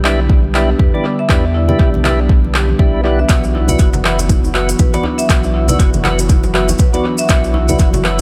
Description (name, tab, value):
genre	afro house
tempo	120 BPM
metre	4/4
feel	swing 58% on 16ths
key	E minor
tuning	A4 = 439 Hz
part	warm analog pad	sustained chords	0.0-8.2 s	D3 to F#4	-24 LUFS	equal	chorus, sidechain pumping
part	percussive tonewheel organ	stabs	0.0-8.2 s	D4 to F#5	-23 LUFS	equal	slow rotary speaker, sidechain pumping, tape echo
part	warm sub bass	bass	0.0-8.2 s	F#1 to E2	-20 LUFS	equal	sidechain pumping
part	afro-pop drum kit	drums	0.0-8.2 s	handclaps, hi-hat	-23 LUFS	equal	tape echo
part	electronic kick drum	drums	0.3-7.9 s	none	-14 LUFS	equal	none
part	marimba with medium hard mallets	arpeggios	0.5-7.9 s	B3 to E5	-24 LUFS	equal	sidechain pumping, tape echo
part	congas	percussion	0.9-8.0 s	none	-26 LUFS	equal	tape echo
part	cabasa	percussion	3.3-8.2 s	none	-30 LUFS	equal	tape echo
part	djembe	percussion	3.5-8.2 s	none	-26 LUFS	equal	none
room	studio reverb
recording	echo-heavy mix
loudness	-13 LUFS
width	mono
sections	0.0-8.2 A section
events	none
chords	0.0 Em7; 3.3 Bsus4